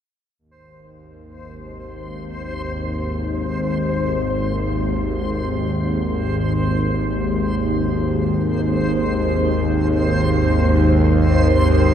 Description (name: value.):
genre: dark ambient drone.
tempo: free time.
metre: none.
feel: none.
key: Ab major.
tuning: A4 = 440 Hz.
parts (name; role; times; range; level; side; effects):
dark analog pad; sustained chords; 0.4-11.9 s; Eb4 to C5; -30 LUFS; right 1 dB; none.
bowed-like drone; drone; 1.4-11.9 s; Ab1 to Eb2; -18 LUFS; equal; built-in reverb.
backwards swelling texture; texture; 1.4-11.9 s; C5; -26 LUFS; equal; built-in reverb, shimmer reverb.
room: wet cathedral reverb, RT60 6.5 s.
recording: dark, warm production.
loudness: -17 LUFS.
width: side -9 dB against mid.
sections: 0.4-11.9 A section.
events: none.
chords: 0.4 Ab.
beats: free time.